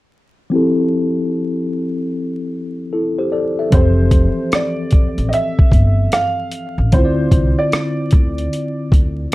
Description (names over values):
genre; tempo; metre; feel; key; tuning
lo-fi hip hop; 75 BPM; 4/4; swing 63% on 16ths; unclear; A4 = 440 Hz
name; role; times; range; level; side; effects
tine electric piano; accompaniment; 0.5-9.3 s; D3 to E5; -19 LUFS; left 1 dB; medium stereo tremolo, cassette tape, low-pass filter
warm upright piano; melody; 3.7-9.1 s; C5 to F5; -22 LUFS; right 2 dB; analog delay, plate reverb
upright bass; bass; 3.7-9.3 s; F1 to D2; -17 LUFS; equal; none
boom bap sampler-style drum kit; drums; 3.7-9.3 s; hi-hat, kick drum, rim click; -13 LUFS; equal; none
room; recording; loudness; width
moderate small room reverb, RT60 0.5 s; vinyl crackle; -14 LUFS; side -19 dB against mid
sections
0.5-3.7 A section; 3.7-9.3 B section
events
filter sweep on tine electric piano 0.5-3.7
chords
0.5 Fmaj9; 6.9 Dm9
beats
| 0.52 1.32 2.12 2.92 | 3.72 4.52 5.32 6.12 | 6.92 7.72 8.52 9.32